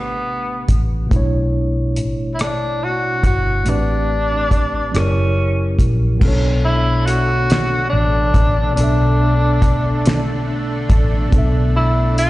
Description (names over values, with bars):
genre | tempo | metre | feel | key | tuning
slow six-eight R&B | 47 BPM (dotted quarters) | 6/8 | straight | B minor from 6.2 s | A4 = 439 Hz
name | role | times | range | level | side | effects
breathy tenor saxophone | melody | 0.0-12.3 s | B3 to F#4 | -20 LUFS | left 1 dB | slapback echo
mellow tine electric piano | accompaniment | 0.0-12.3 s | A2 to E5 | -23 LUFS | right 1 dB | medium stereo tremolo, slapback echo
vintage muted fingered electric bass | bass | 0.0-12.3 s | F#1 to B1 | -18 LUFS | equal | none
cloth-damped thuddy drum kit | drums | 0.7-12.3 s | crash cymbal, hi-hat, kick drum, rim click, snare drum | -17 LUFS | equal | none
lush unison pad | sustained chords | 6.2-12.3 s | D3 to D4 | -26 LUFS | equal | chorus
room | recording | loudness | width
studio reverb | live gig heard through the venue's PA, recital hall reverb, nothing above 10.7 kHz | -14 LUFS | side -17 dB against mid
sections
0.0-6.2 A section; 6.2-12.3 B section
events
none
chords
0.0 Am11; 1.1 Bm11; 3.7 Am11; 4.9 F#7b9; 6.2 Bm9